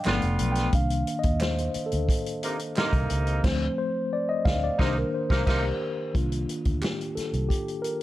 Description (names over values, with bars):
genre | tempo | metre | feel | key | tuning
lush 1970s-style soul | 89 BPM | 4/4 | straight | C dorian | A4 = 440 Hz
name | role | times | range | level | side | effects
mellow tine electric piano | accompaniment | 0.0-8.0 s | Eb3 to G5 | -28 LUFS | left 2 dB | medium stereo tremolo
group handclap | percussion | 0.0-7.0 s | none | -39 LUFS | right 2 dB | none
clear horn section | stabs | 0.1-5.6 s | C3 to F4 | -30 LUFS | right 2 dB | none
vintage muted fingered electric bass | bass | 0.1-7.5 s | F1 to Eb2 | -28 LUFS | equal | none
vintage drum kit | drums | 0.1-8.0 s | crash cymbal, hi-hat, kick drum, snare drum | -28 LUFS | equal | none
room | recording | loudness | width
little or no reverb | dark, warm production | -24 LUFS | side -15 dB against mid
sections
0.0-6.1 A section; 6.1-8.0 B section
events
tine electric piano solo 0.0-6.1, 6.1-8.0; band accent 3.4-6.1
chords
0.1 G7; 0.7 Cm7; 3.4 Dm7; 4.8 Cm7